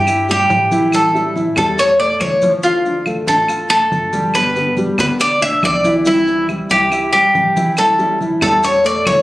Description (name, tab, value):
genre	latin, Cuban son and guajira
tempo	140 BPM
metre	4/4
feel	straight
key	C major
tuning	A4 = 440 Hz
part	Cuban tres	melody	0.0-9.2 s	E4 to E5	-13 LUFS	equal	plate reverb
part	nylon-string guitar	accompaniment	0.0-9.2 s	B2 to G4	-24 LUFS	left 1 dB	none
part	tight sequencer bass	bass	0.0-9.2 s	G1 to A2	-27 LUFS	equal	none
part	warm concert grand piano	arpeggios	0.1-9.2 s	E3 to F5	-21 LUFS	equal	none
part	claves	percussion	0.1-9.2 s	none	-25 LUFS	equal	none
part	congas	percussion	0.1-9.2 s	none	-25 LUFS	equal	none
part	maracas	percussion	0.1-9.2 s	none	-34 LUFS	left 1 dB	none
room	moderate studio reverb, RT60 0.9 s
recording	recorded on a phone in the room, club reverb, compression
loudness	-12 LUFS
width	side -17 dB against mid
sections	0.0-9.2 A section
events	none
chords	0.0 C; 0.9 A7; 2.6 Dm; 4.3 G; 6.1 C; 7.8 A7